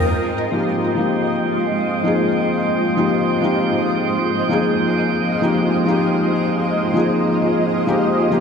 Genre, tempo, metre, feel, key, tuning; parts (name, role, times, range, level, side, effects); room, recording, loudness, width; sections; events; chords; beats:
downtempo; 98 BPM; 4/4; swing 55% on 16ths; F minor; A4 = 440 Hz
felt-muted upright piano; accompaniment; 0.0-8.4 s; F3 to Ab4; -19 LUFS; left 2 dB; low-pass filter, ping-pong delay
granular cloud pad; sustained chords; 0.0-8.4 s; Ab3 to Eb5; -21 LUFS; right 1 dB; built-in reverb, ensemble chorus
drifting glass-harmonics texture; texture; 0.0-8.4 s; C4 to C5; -25 LUFS; right 4 dB; chorus, built-in reverb
wet lush hall reverb, RT60 2.1 s; bright 1980s-style digital production; -16 LUFS; side -6 dB against mid
0.1-8.4 A section
0.1 Fm7
| 0.06 0.67 1.28 1.89 | 2.50 3.12 3.73 4.34 | 4.95 5.57 6.18 6.79 | 7.40 8.02